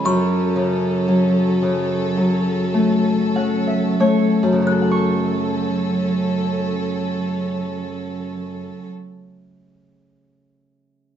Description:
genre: children's music, lullaby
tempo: 44-61 BPM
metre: 4/4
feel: rubato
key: F# minor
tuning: A4 = 437 Hz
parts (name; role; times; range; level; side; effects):
- music box; melody; 0.0-8.9 s; C#6 to F#6; -26 LUFS; left 3 dB; none
- Celtic harp; accompaniment; 0.0-9.1 s; F#2 to C#6; -19 LUFS; left 2 dB; none
- warm chamber string section; sustained chords; 0.0-8.9 s; F#3 to A4; -23 LUFS; right 3 dB; none
room: moderate large studio reverb, RT60 0.9 s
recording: band playing live in one room, nothing above 7.8 kHz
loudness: -17 LUFS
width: side -9 dB against mid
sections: 0.0-4.7 A section; 4.7-10.0 B section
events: slowing down 0.0-4.7; harp fill 2.7-4.7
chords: 0.1 F#m

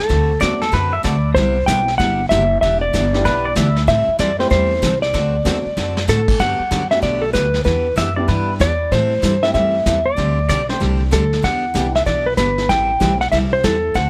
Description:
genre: country, western swing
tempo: 191 BPM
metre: 4/4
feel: swing 64% on 8ths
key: unclear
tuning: A4 = 440 Hz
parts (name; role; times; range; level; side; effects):
- clean lap steel guitar; melody; 0.0-14.1 s; A4 to G5; -20 LUFS; equal; none
- picked steel-string acoustic guitar; accompaniment; 0.1-14.1 s; C3 to A4; -26 LUFS; equal; none
- upright bass; bass; 0.1-14.1 s; E1 to A2; -23 LUFS; equal; none
- vintage brush drum kit; drums; 0.1-14.1 s; brushed snare drum, crash cymbal, hi-hat, kick drum, snare drum; -26 LUFS; equal; none
- pedal steel guitar; second line; 0.4-3.8, 8.0-10.8 s; A4 to E5; -24 LUFS; equal; none
- dark upright piano; accompaniment; 0.4-13.2 s; F#3 to G4; -28 LUFS; equal; none
room: light reverb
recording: none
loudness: -17 LUFS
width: mono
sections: 0.0-6.4 A section; 6.4-14.1 B section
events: drum fill 5.8-6.1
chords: 0.1 D7; 1.4 Cmaj7; 2.6 Em7; 3.9 Am7; 5.1 D7; 6.4 Gmaj9; 7.7 Em7; 8.9 Am7; 10.2 D7sus4; 11.4 Em7; 12.7 Am7

